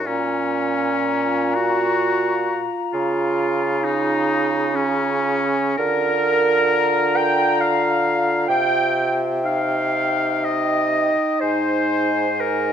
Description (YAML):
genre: classical, slow romantic movement for wind quintet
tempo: 55-68 BPM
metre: 3/4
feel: rubato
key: unclear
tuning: A4 = 440 Hz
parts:
  - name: clear oboe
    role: second line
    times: 0.0-12.7 s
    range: Db4 to G5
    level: -24 LUFS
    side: left 5 dB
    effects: none
  - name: warm bassoon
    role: bass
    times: 0.0-12.7 s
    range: Ab2 to D3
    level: -24 LUFS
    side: right 1 dB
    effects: none
  - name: mellow concert flute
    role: melody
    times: 0.1-12.7 s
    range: G5 to Bb5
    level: -27 LUFS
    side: left 10 dB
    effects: none
  - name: clear French horn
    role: accompaniment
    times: 0.1-12.7 s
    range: Eb4 to F4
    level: -27 LUFS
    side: equal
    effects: none
  - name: dark clarinet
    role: accompaniment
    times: 0.1-12.7 s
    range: Db4 to G5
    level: -23 LUFS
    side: right 7 dB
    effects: none
room: moderate recital hall reverb, RT60 1.8 s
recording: none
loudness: -17 LUFS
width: side -8 dB against mid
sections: 0.0-12.7 A section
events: none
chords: 0.1 Bbm; 2.9 Bbm/Db; 5.8 Bb/D; 8.5 Cm; 11.4 Abadd9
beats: | 0.06 1.04 2.02 | 2.93 3.84 4.75 | 5.78 6.72 7.60 | 8.49 9.45 10.44 | 11.41 12.40